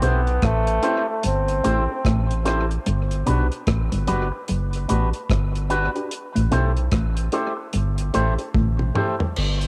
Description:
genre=roots reggae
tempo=74 BPM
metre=4/4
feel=swing 60% on 16ths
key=unclear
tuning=A4 = 443 Hz
part: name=brilliant trombone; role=melody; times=0.0-2.4 s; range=A3 to C4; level=-28 LUFS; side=equal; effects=cassette tape, dub echo
part: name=electric guitar with an envelope filter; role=accompaniment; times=0.0-9.2 s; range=A3 to C5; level=-30 LUFS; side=equal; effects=cassette tape, dub echo
part: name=mellow electric guitar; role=riff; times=0.0-8.8 s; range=F#2 to B2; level=-27 LUFS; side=equal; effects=cassette tape
part: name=dark upright piano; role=stabs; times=0.0-9.1 s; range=D4 to C5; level=-33 LUFS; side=equal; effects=cassette tape
part: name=soft dub sub bass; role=bass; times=0.0-9.7 s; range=F#1 to B1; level=-25 LUFS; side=equal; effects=none
part: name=deep reggae drum kit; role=drums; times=0.0-9.7 s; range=crash cymbal, hi-hat, kick drum, rim click, toms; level=-28 LUFS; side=equal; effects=cassette tape, analog delay
room=moderate spring reverb, RT60 2.8 s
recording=home recording on cassette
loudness=-22 LUFS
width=mono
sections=0.0-9.4 A section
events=drum fill 8.5-9.4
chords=0.0 Am7; 2.9 Gmaj7; 6.1 Am7

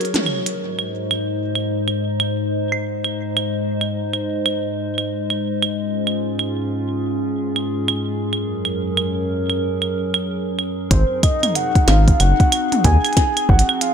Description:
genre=IDM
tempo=93 BPM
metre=4/4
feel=swing 62% on 16ths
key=Ab mixolydian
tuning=A4 = 440 Hz
part: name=warbly tape-like pad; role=sustained chords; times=0.0-13.9 s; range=Gb2 to Eb5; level=-22 LUFS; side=equal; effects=chorus, built-in reverb
part: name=glitchy drum kit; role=drums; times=0.0-13.9 s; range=claves, hi-hat, snare drum, toms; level=-21 LUFS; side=right 3 dB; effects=small room ambience
part: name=warbly nostalgic lead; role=melody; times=10.9-13.9 s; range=C5 to Ab5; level=-20 LUFS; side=left 1 dB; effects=chorus, tape echo
part: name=rubbery square bass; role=bass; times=10.9-13.6 s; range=Gb1 to Eb2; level=-14 LUFS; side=equal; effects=none
part: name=electronic kick drum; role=drums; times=10.9-13.7 s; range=none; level=-16 LUFS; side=equal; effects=small room ambience
room=light reverb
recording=none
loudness=-17 LUFS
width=side -7 dB against mid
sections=0.6-10.9 A section; 10.9-13.9 B section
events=break 0.0-0.6; drum fill 0.0-0.6; band accent 0.2-0.5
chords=0.0 Gbadd9; 0.6 Ab; 5.7 Db/Ab; 8.3 Gbadd9; 10.9 Ab

